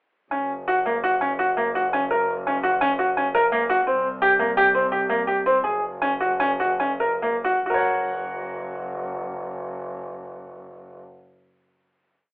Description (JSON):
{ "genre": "contemporary instrumental, chamber music in an uneven meter", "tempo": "133-173 BPM", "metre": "5/4", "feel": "straight", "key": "Gb lydian", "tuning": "A4 = 440 Hz", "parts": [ { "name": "bright baby grand piano", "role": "arpeggios", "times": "0.3-11.1 s", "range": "Bb3 to Gb5", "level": "-20 LUFS", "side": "equal", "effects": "none" }, { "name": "clear double bass", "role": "bass", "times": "0.3-11.0 s", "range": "Gb1 to C2", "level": "-32 LUFS", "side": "equal", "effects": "none" } ], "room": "moderate studio reverb, RT60 0.7 s", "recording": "telephone sound", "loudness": "-20 LUFS", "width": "side -23 dB against mid", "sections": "0.3-7.7 A section; 7.7-12.1 final chord", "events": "slowing down 4.6-7.7", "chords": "0.3 Gb; 3.9 C5; 5.6 Gb5; 7.7 Gb" }